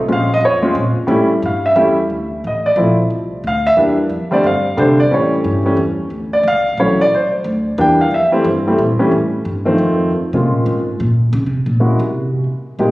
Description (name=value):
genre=jazz piano trio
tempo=180 BPM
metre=3/4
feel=swing 62% on 8ths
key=D minor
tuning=A4 = 440 Hz
part: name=upright bass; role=bass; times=0.0-12.9 s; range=A1 to Db3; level=-20 LUFS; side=equal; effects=none
part: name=warm concert grand piano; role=melody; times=0.1-12.9 s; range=D3 to G5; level=-14 LUFS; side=equal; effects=none
room=wet concert hall reverb, RT60 2.2 s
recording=recorded on a phone in the room, studio reverb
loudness=-13 LUFS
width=side -18 dB against mid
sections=0.0-2.1 A section; 2.1-10.1 A section; 10.1-12.9 A section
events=grand piano solo 0.0-10.1; upright bass solo 10.1-12.9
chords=0.1 Bbm7; 1.1 A7; 2.1 D5; 3.1 C; 4.1 F69; 5.1 A7; 6.1 Dmaj7(no3); 7.1 C; 8.1 Fmaj7; 9.1 F9 (rootless); 9.8 F7; 10.1 Bbm7; 11.1 Gb (rootless); 12.1 N.C.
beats=| 0.09 0.43 0.76 | 1.10 1.43 1.77 | 2.10 2.44 2.77 | 3.11 3.44 3.77 | 4.11 4.44 4.78 | 5.11 5.45 5.78 | 6.12 6.45 6.79 | 7.12 7.45 7.79 | 8.12 8.46 8.79 | 9.12 9.46 9.79 | 10.12 10.46 10.79 | 11.13 11.46 11.79 | 12.13 12.46 12.80